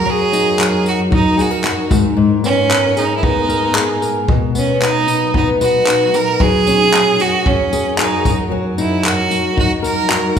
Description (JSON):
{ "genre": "acoustic pop", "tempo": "114 BPM", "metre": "4/4", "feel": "straight", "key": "unclear", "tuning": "A4 = 440 Hz", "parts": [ { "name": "bright violin", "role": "melody", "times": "0.0-10.3 s", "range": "C#4 to A#4", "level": "-17 LUFS", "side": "right 4 dB", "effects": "none" }, { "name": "fingerpicked steel-string acoustic guitar", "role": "accompaniment", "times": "0.0-10.4 s", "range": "G#2 to B4", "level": "-17 LUFS", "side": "left 3 dB", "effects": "none" }, { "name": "granular cloud pad", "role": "sustained chords", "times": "0.0-10.4 s", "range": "F#2 to B4", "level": "-24 LUFS", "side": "right 1 dB", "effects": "built-in reverb" }, { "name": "unplugged drum kit", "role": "drums", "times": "0.3-10.4 s", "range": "handclaps, kick drum, tambourine", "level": "-19 LUFS", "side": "left 1 dB", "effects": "none" } ], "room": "wet recital hall reverb, RT60 1.4 s", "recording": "recorded in a church or concert hall", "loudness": "-12 LUFS", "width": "side -8 dB against mid", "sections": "0.0-10.4 A section", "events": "none", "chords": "0.0 D#m/F#; 1.9 G#madd9; 4.3 B; 6.4 F#add9; 8.3 D#m/F#" }